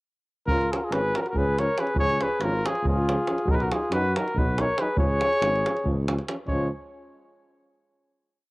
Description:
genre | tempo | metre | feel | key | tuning
balkan folk, Balkan brass band | 281 BPM (eighths) | 7/8 | straight | Db mixolydian | A4 = 440 Hz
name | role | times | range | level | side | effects
mellow trumpet | melody | 0.5-6.7 s | Ab4 to Db5 | -26 LUFS | equal | cassette tape
mellow flugelhorn | second line | 0.5-6.7 s | Ab3 to Bb4 | -30 LUFS | left 1 dB | cassette tape
warm euphonium | accompaniment | 0.5-6.7 s | F3 to Gb3 | -37 LUFS | right 2 dB | none
warm trombone | accompaniment | 0.5-6.7 s | Db4 to Eb4 | -36 LUFS | left 2 dB | cassette tape
mellow tuba | bass | 0.5-6.7 s | Ab1 to Gb2 | -28 LUFS | equal | none
davul | percussion | 0.5-6.7 s | none | -29 LUFS | equal | none
room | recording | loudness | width
light reverb, small room ambience | home recording on cassette | -22 LUFS | side -23 dB against mid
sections
0.5-6.5 A section; 6.5-8.0 final chord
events
none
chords
0.5 Db; 3.5 Cb; 5.0 Db

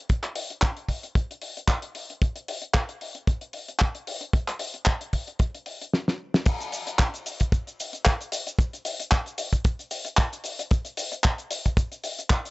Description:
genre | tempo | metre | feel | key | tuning
nu-disco | 113 BPM | 4/4 | swing 54% on 16ths | none | none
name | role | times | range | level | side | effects
damped 70s drum kit | drums | 0.1-12.5 s | cabasa, crash cymbal, handclaps, hi-hat, snare drum | -28 LUFS | left 1 dB | none
kick drum | drums | 0.1-12.4 s | none | -22 LUFS | equal | none
room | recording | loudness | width
little or no reverb | dry, gritty hardware recording, nothing above 8.0 kHz | -24 LUFS | side -22 dB against mid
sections
0.0-6.5 A section; 6.5-12.5 B section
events
drum fill 5.9-6.5; drop 6.5-12.5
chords
none

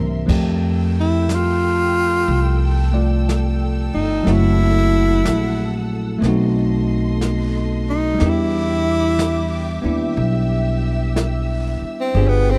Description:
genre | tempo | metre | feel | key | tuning
jazz ballad | 60 BPM | 4/4 | swing 66% on 8ths | unclear | A4 = 440 Hz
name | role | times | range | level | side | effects
bell-like tine electric piano | accompaniment | 0.0-12.6 s | E3 to D5 | -24 LUFS | equal | none
rich studio string section | sustained chords | 0.0-12.6 s | G4 to E6 | -33 LUFS | equal | none
upright bass | bass | 0.0-12.6 s | F#1 to F2 | -22 LUFS | equal | none
jazz brush drum kit | drums | 0.3-12.6 s | brushed snare drum, crash cymbal, hi-hat, kick drum, snare drum | -30 LUFS | equal | none
breathy tenor saxophone | melody | 1.0-12.6 s | B3 to F4 | -22 LUFS | equal | none
room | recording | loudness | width
little or no reverb | dark, warm production | -18 LUFS | mono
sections
0.0-12.6 A section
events
drum fill 0.0; tenor saxophone solo 0.0-12.6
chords
0.3 Fmaj9; 4.3 F#m7b5; 6.2 B7b9; 8.2 Em7

